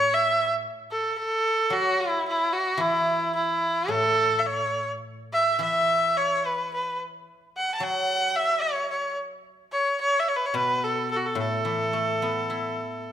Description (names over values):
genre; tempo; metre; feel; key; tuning
chinese traditional; 109 BPM; 4/4; rubato; A gong mode; A4 = 444 Hz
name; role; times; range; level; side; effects
clear erhu; melody; 0.0-13.1 s; E4 to A5; -23 LUFS; equal; none
guzheng; accompaniment; 0.0-13.1 s; A2 to E4; -31 LUFS; left 1 dB; none
room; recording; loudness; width
moderate recital hall reverb, RT60 1.6 s; minimal, uncompressed stereo recording; -23 LUFS; side -10 dB against mid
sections
0.0-13.1 A section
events
none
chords
none